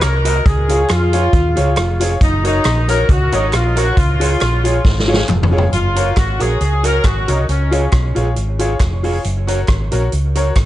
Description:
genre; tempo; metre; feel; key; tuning
ska; 136 BPM; 4/4; swing 54% on 8ths; F# major; A4 = 441 Hz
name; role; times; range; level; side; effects
warm horn section; melody; 0.0-7.9 s; C#4 to A#4; -19 LUFS; left 1 dB; tape echo, plate reverb
mellow electric guitar; accompaniment; 0.0-10.5 s; E#4 to D#5; -23 LUFS; right 2 dB; tape echo, plate reverb
hollow-body short-scale fingered electric bass; bass; 0.0-10.7 s; E#1 to E#2; -17 LUFS; equal; none
vintage drum kit; drums; 0.0-10.7 s; hi-hat, kick drum, rim click, snare drum, toms; -17 LUFS; equal; none
group handclap; percussion; 0.0-10.7 s; none; -34 LUFS; right 3 dB; none
bright upright piano; stabs; 0.2-10.5 s; E#4 to D#5; -23 LUFS; left 4 dB; plate reverb
room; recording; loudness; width
light reverb; nothing above 10.4 kHz; -13 LUFS; side -14 dB against mid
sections
0.0-5.7 A section; 5.7-10.7 B section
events
drum fill 4.8-5.7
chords
0.5 C#; 2.2 F#; 4.0 C#; 5.7 F#; 7.5 C#; 9.2 F#

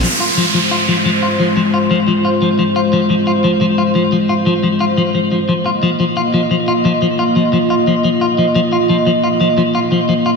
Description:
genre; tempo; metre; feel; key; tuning
drum and bass; 176 BPM; 4/4; straight; F minor; A4 = 441 Hz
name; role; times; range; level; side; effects
dark analog pad; sustained chords; 0.0-10.4 s; Ab3 to Eb5; -15 LUFS; equal; chorus, vintage 12-bit sampler grit
clean electric guitar; arpeggios; 0.0-10.3 s; F3 to F4; -15 LUFS; left 3 dB; ping-pong delay
downlifter; sound effects; 0.0-2.8 s; none; -19 LUFS; right 3 dB; none
room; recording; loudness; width
wet lush hall reverb, RT60 1.9 s; dense, heavily limited modern master; -12 LUFS; side -4 dB against mid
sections
0.0-10.4 A section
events
none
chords
0.0 Fm; 5.5 Ebsus2

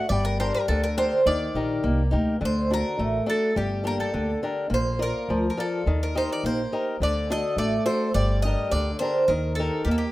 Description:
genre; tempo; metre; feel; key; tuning
greek folk, Greek bouzouki band; 104 BPM; 2/4; straight; D phrygian dominant; A4 = 440 Hz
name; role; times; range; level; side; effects
Greek bouzouki; melody; 0.0-10.1 s; G4 to Eb5; -27 LUFS; right 1 dB; none
fingerpicked swing-style acoustic guitar; accompaniment; 0.0-10.1 s; D3 to D5; -26 LUFS; left 1 dB; none
upright bass; bass; 0.1-10.1 s; G1 to Eb2; -26 LUFS; equal; none
room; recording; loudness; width
studio ambience; rough home demo mix; -22 LUFS; side -17 dB against mid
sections
0.0-2.4 A section; 2.4-10.1 B section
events
none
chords
0.1 Gm; 1.3 Eb; 2.4 D; 3.6 Gm; 4.7 Bb; 5.9 Eb; 7.0 D; 8.2 Gm; 9.3 Eb

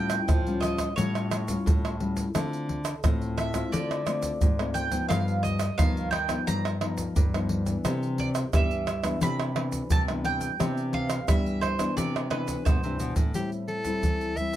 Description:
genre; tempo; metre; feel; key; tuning
samba and choro; 87 BPM; 4/4; straight; C major; A4 = 440 Hz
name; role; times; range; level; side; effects
mandolin; second line; 0.0-13.1 s; B4 to B5; -32 LUFS; right 3 dB; none
nylon-string guitar; accompaniment; 0.0-14.6 s; G2 to E#4; -32 LUFS; left 3 dB; none
nylon-string guitar; bass; 0.0-13.3 s; G2 to G3; -31 LUFS; left 1 dB; none
tube shaker, pandeiro, tamborim and surdo; percussion; 0.1-14.6 s; none; -27 LUFS; right 1 dB; none
bright soprano saxophone; melody; 13.4-14.6 s; G4 to E5; -30 LUFS; equal; none
room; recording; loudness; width
light reverb; close, detailed microphones; -24 LUFS; side -12 dB against mid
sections
0.0-13.4 A section; 13.4-14.6 B section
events
mandolin solo 0.0-13.4; drum fill 12.7-13.4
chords
0.0 Aaug7; 2.4 Dm7; 5.1 G7alt; 7.8 Cmaj9; 13.4 Am7

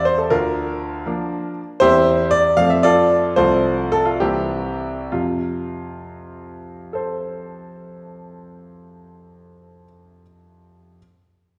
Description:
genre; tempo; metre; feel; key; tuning
classical-period piano sonatina; 63-82 BPM (dotted quarters); 6/8; rubato; F major; A4 = 441 Hz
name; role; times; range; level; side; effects
clear concert grand piano; solo; 0.0-11.0 s; C2 to F5; -20 LUFS; equal; none
room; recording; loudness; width
wet recital hall reverb, RT60 1.4 s; recorded in a church or concert hall; -19 LUFS; mono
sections
0.0-5.1 A section; 5.1-8.7 B section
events
slowing down 1.1-5.1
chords
0.3 Bb/D; 1.8 C7/E; 2.6 F; 3.4 F/C; 4.2 C7; 5.1 F

